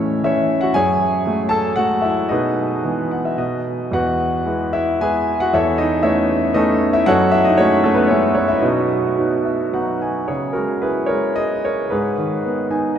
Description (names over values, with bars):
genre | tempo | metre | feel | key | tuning
classical, lyrical solo piano | 106-118 BPM | 3/4 | rubato | E major | A4 = 440 Hz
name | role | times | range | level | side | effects
clear concert grand piano | solo | 0.0-13.0 s | E2 to A5 | -16 LUFS | equal | none
room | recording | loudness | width
wet cathedral reverb, RT60 5.3 s | in a vast, echoing space | -16 LUFS | side -9 dB against mid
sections
0.0-10.3 A section; 10.3-13.0 B section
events
grand piano fill 2.8-3.9, 9.2-10.3, 12.4-13.0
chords
0.0 A; 0.7 F#madd9; 2.3 E/B; 3.4 B; 3.9 E; 5.5 Aadd9/E; 7.1 F#madd9; 8.6 B; 10.3 C#m; 11.9 G#m